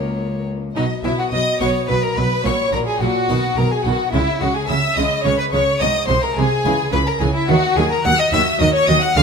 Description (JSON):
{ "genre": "classical, baroque-style concerto movement with solo episodes", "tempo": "72 BPM (dotted quarters)", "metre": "6/8", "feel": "straight", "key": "B major", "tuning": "A4 = 441 Hz", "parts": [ { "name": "warm studio violin section", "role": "melody", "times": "0.0-9.2 s", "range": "A#4 to F#6", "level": "-24 LUFS", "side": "left 4 dB", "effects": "none" }, { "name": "warm violin", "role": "melody", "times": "0.0-9.2 s", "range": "D#4 to F#5", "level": "-21 LUFS", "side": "left 2 dB", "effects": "none" }, { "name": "rich chamber violin section", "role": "second line", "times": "0.0-9.2 s", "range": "D#4 to F#5", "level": "-23 LUFS", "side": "equal", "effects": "none" }, { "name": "harpsichord", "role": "accompaniment", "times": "0.0-9.2 s", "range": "C#2 to A#4", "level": "-26 LUFS", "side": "left 2 dB", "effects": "none" }, { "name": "rich chamber viola section", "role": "accompaniment", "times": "0.0-9.2 s", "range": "D#3 to A#3", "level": "-27 LUFS", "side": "equal", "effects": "none" }, { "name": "warm chamber cello section", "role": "bass", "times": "0.0-9.2 s", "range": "C#2 to D#3", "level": "-23 LUFS", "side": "right 3 dB", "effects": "none" }, { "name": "warm chamber double bass section", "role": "bass", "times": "0.8-9.2 s", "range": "A#1 to D#2", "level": "-23 LUFS", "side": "right 3 dB", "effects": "none" } ], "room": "moderate recital hall reverb, RT60 1.5 s", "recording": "none", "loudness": "-15 LUFS", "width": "side -6 dB against mid", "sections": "0.8-9.2 A section", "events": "none", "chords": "0.0 F#; 0.8 B5; 2.5 F#7/A#; 3.3 B; 4.1 C#m; 5.8 G#7/B#; 6.6 C#m; 7.5 D#m", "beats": "| 0.76 1.61 | 2.45 3.29 | 4.13 4.97 | 5.81 6.65 | 7.49 8.32 | 9.17" }